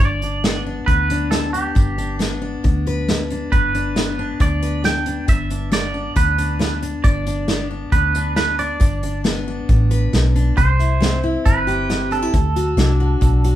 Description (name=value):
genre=honky-tonk and classic country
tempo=136 BPM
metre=4/4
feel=straight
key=G major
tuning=A4 = 438 Hz
part: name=twangy electric guitar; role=second line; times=0.0-13.6 s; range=G4 to G5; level=-23 LUFS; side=right 4 dB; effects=none
part: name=picked steel-string acoustic guitar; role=accompaniment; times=0.0-13.6 s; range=G2 to B4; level=-24 LUFS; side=left 3 dB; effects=none
part: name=vintage muted fingered electric bass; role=bass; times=0.0-13.6 s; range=G1 to D2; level=-20 LUFS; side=equal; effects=none
part: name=unplugged drum kit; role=drums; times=0.0-13.5 s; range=hi-hat, kick drum, snare drum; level=-20 LUFS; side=equal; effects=none
room=light reverb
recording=band playing live in one room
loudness=-16 LUFS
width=side -12 dB against mid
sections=0.0-13.6 A section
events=clean electric guitar solo 0.0-13.6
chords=0.0 G; 10.6 C; 12.3 D